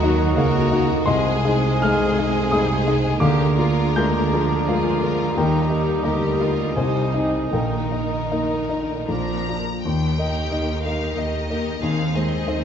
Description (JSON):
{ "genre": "classical, romantic movement for piano and orchestra", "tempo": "76-93 BPM", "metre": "3/4", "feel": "rubato", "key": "Eb major", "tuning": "A4 = 440 Hz", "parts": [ { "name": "rich studio violin section", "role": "melody", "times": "0.0-12.6 s", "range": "Ab4 to Bb5", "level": "-32 LUFS", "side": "left 4 dB", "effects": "none" }, { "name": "warm baby grand piano", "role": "melody", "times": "0.0-12.6 s", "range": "Bb1 to G6", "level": "-21 LUFS", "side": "left 1 dB", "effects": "none" }, { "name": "clear clarinet", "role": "second line", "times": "0.0-9.5 s", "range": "Eb4 to Ab4", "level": "-33 LUFS", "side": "left 2 dB", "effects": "none" }, { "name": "rich symphonic violin section", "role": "second line", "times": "0.0-12.6 s", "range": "D4 to Bb4", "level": "-31 LUFS", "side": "left 3 dB", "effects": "none" }, { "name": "silver concert flute", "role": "second line", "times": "0.0-9.5 s", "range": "Ab5 to Bb5", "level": "-30 LUFS", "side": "left 1 dB", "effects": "none" }, { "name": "warm cor anglais", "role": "second line", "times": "0.0-9.5 s", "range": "D5 to Eb5", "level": "-32 LUFS", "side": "right 5 dB", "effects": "none" }, { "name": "rich symphonic viola section", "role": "accompaniment", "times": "0.0-12.6 s", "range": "Eb3 to Eb4", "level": "-30 LUFS", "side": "equal", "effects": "none" }, { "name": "rich studio cello section", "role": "bass", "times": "0.0-12.6 s", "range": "Bb2 to Eb3", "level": "-29 LUFS", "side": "right 4 dB", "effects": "none" }, { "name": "rich symphonic double bass section", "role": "bass", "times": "0.0-12.6 s", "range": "Bb1 to Eb2", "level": "-28 LUFS", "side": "right 4 dB", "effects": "none" }, { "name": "mellow French horn section", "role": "sustained chords", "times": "1.1-9.8 s", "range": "Ab3 to Ab4", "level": "-30 LUFS", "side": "left 5 dB", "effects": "none" } ], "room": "wet scoring stage reverb, RT60 1.6 s", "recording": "dark, warm production, nothing above 7.8 kHz", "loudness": "-18 LUFS", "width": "side -8 dB against mid", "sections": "0.0-9.8 A section; 9.8-12.6 B section", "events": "none", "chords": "0.0 Ebm; 1.1 Ab/C; 3.2 Bb7/D; 5.4 Eb; 6.8 Ab/C; 7.5 Eb/Bb; 9.1 Bb; 9.8 Eb; 11.8 Ab/Eb" }